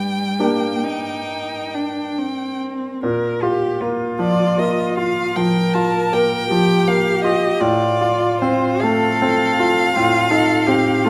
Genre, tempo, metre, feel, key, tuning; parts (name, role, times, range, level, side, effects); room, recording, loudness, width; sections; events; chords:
classical, slow romantic movement for piano trio; 44-56 BPM (dotted quarters); 12/8; rubato; G minor, Bb major from 3.0 s; A4 = 444 Hz
rich violin; melody; 0.0-11.1 s; C5 to A5; -24 LUFS; equal
rich cello; second line; 0.0-11.1 s; G3 to Bb4; -24 LUFS; equal
bright grand piano; accompaniment; 0.0-11.1 s; G2 to G4; -21 LUFS; equal
moderate recital hall reverb, RT60 1.6 s; close, detailed microphones; -18 LUFS; mono
0.0-3.0 A section; 3.0-11.1 B section
0.0 Gm; 3.0 Bb5; 7.6 F7/A